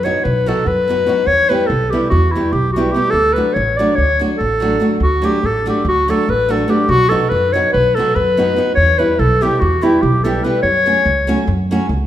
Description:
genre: balkan folk, Balkan wedding band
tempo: 288 BPM (eighths)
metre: 9/8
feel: straight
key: D major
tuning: A4 = 440 Hz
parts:
  - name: warm clarinet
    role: melody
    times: 0.0-11.4 s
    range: E4 to D5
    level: -15 LUFS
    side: left 1 dB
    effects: none
  - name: nylon-string guitar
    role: accompaniment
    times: 0.0-11.9 s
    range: F#3 to G4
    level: -19 LUFS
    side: right 1 dB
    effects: none
  - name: upright bass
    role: bass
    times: 0.0-12.1 s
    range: A1 to F#2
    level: -19 LUFS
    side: right 1 dB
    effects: none
room: wet recital hall reverb, RT60 1.4 s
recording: minimal, uncompressed stereo recording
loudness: -12 LUFS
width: side -11 dB against mid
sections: 0.0-5.0 A section; 5.0-12.1 A section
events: none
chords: 0.0 B; 1.3 Em; 3.1 D; 6.9 B; 8.8 Em; 10.6 F#m

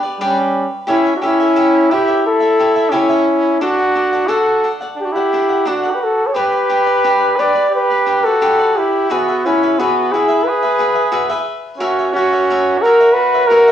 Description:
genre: mexican folk, mariachi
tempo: 88 BPM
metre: 4/4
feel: straight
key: unclear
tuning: A4 = 441 Hz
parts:
  - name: cavaquinho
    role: accompaniment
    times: 0.0-13.7 s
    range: D4 to F#5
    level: -20 LUFS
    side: left 2 dB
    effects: cassette tape
  - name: dark trumpet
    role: melody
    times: 0.2-13.7 s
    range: C#4 to D5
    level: -14 LUFS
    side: equal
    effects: none
  - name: warm trumpet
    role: second line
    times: 0.2-13.7 s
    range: G3 to B4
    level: -19 LUFS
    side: right 2 dB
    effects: cassette tape
room: moderate spring reverb, RT60 1.2 s, small room reverb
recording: home recording on cassette, studio ambience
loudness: -12 LUFS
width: side -10 dB against mid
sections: 0.0-13.7 A section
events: none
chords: 0.0 G; 0.9 A7; 3.6 D; 6.4 G; 9.1 Eadd9; 11.8 F#7

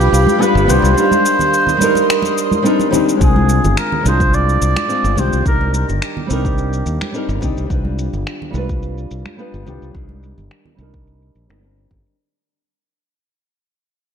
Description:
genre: sunset chillout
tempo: 107 BPM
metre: 4/4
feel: swing 53% on 16ths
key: C minor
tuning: A4 = 440 Hz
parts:
  - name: trumpet with cup mute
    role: melody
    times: 0.0-7.4 s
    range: G4 to D5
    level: -19 LUFS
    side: right 1 dB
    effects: ping-pong delay
  - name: flamenco guitar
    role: accompaniment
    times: 0.0-12.2 s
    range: G3 to B4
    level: -19 LUFS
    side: moving between left 4 dB and right 4 dB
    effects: auto-pan, low-pass filter
  - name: ethereal airy pad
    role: sustained chords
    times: 0.0-3.2 s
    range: G4 to Eb6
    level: -19 LUFS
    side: equal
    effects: ensemble chorus, built-in reverb
  - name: modern bright fingered electric bass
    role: bass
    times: 0.0-12.0 s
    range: G1 to Eb2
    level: -17 LUFS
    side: equal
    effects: none
  - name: electronic shaker and finger snaps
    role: drums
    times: 0.0-12.2 s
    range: none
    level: -24 LUFS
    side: left 1 dB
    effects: low-pass filter on perc, low-pass filter on snare
  - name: congas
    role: percussion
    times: 0.3-12.0 s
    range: none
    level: -24 LUFS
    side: right 3 dB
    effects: none
  - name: electronic kick drum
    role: drums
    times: 3.2-12.0 s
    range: none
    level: -18 LUFS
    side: equal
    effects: none
room: moderate recital hall reverb, RT60 1.6 s, studio reverb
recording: dark, warm production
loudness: -13 LUFS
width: side -7 dB against mid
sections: 0.0-3.2 A section; 3.2-12.2 B section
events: fade-out 3.2-12.2; filter sweep on nylon-string guitar 3.2-12.2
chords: 0.0 G7; 1.0 Cm7; 3.2 Dm7b5; 5.5 Cm7; 7.7 G7; 9.9 Cm7

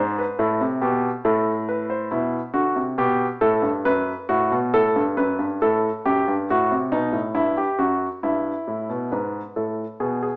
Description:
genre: classical, baroque-style two-part invention for grand piano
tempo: 69 BPM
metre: 4/4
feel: straight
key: unclear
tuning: A4 = 440 Hz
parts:
  - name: warm concert grand piano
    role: solo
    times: 0.0-10.4 s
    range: F#2 to C5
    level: -20 LUFS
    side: equal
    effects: none
room: wet stone room reverb, RT60 1.3 s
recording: small speaker sound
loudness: -20 LUFS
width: side -28 dB against mid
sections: 0.0-9.1 A section; 9.1-10.4 B section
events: none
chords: 0.4 Am; 2.1 Em/B; 3.9 B5/F#; 5.6 B7 (rootless); 7.3 Em; 9.1 G#m

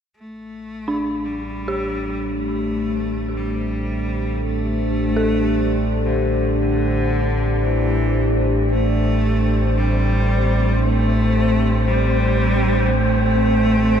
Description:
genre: dark ambient drone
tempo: 57 BPM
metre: 4/4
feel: straight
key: unclear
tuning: A4 = 440 Hz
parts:
  - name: rich cello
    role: melody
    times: 0.2-14.0 s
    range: D3 to A3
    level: -23 LUFS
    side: left 1 dB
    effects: tape echo
  - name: deep dark ambient pad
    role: sustained chords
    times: 1.6-14.0 s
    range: A3 to C5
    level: -24 LUFS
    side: left 1 dB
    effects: chorus, built-in reverb
  - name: deep rumbling drone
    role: drone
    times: 1.1-14.0 s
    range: A1 to A2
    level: -21 LUFS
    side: equal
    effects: built-in reverb
  - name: dark detuned synth bell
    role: arpeggios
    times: 0.9-14.0 s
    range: D4 to A4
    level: -28 LUFS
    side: right 1 dB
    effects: chorus, tape echo
  - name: wind-like tuned noise texture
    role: texture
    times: 9.4-14.0 s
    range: C4 to C5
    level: -23 LUFS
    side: equal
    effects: built-in reverb
room: moderate huge ambient reverb, RT60 8.0 s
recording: none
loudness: -17 LUFS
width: side -8 dB against mid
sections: 0.2-14.0 A section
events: fade-in on cello 0.2-14.0; fade-out on ambient pad 0.2-14.0; fade-out on synth bell 0.2-14.0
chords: 0.2 Am

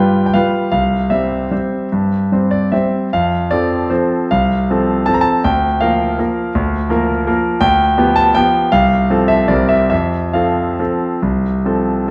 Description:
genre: classical, piano waltz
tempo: 134-174 BPM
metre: 3/4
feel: rubato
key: F major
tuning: A4 = 439 Hz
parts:
  - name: bright concert grand piano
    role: solo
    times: 0.0-12.1 s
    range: C2 to Bb5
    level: -15 LUFS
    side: equal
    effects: none
room: moderate recital hall reverb, RT60 1.4 s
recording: dark, warm production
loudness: -15 LUFS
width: mono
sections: 0.0-12.1 A section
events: none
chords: 0.0 G7; 0.7 C; 3.1 F; 5.5 Bb/D; 7.6 G7/D; 8.7 F/C; 9.5 C7; 9.9 F

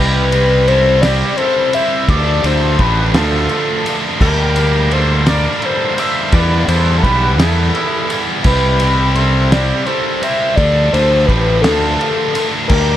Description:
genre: indie rock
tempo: 57 BPM (dotted quarters)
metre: 6/8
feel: straight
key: C major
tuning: A4 = 443 Hz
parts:
  - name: overdriven synth lead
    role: melody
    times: 0.0-13.0 s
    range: A4 to E5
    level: -17 LUFS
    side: left 2 dB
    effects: distortion, phaser
  - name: bright trumpet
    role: second line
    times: 0.0-13.0 s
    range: E4 to C5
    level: -26 LUFS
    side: right 6 dB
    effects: none
  - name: scooped high-gain guitar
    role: riff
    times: 0.0-13.0 s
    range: C3 to E4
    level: -17 LUFS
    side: right 1 dB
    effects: distortion
  - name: fuzz fingered electric bass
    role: bass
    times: 0.0-13.0 s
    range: A1 to E2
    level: -15 LUFS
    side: equal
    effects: overdrive
  - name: cloth-damped thuddy drum kit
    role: drums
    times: 0.3-12.9 s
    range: crash cymbal, kick drum, ride cymbal, snare drum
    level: -20 LUFS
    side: equal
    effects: none
room: light reverb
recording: none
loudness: -11 LUFS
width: side -12 dB against mid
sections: 0.0-13.0 A section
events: none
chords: 0.0 C; 2.1 Dm; 4.2 Gm/D; 6.3 Em; 8.4 C; 10.6 Dm

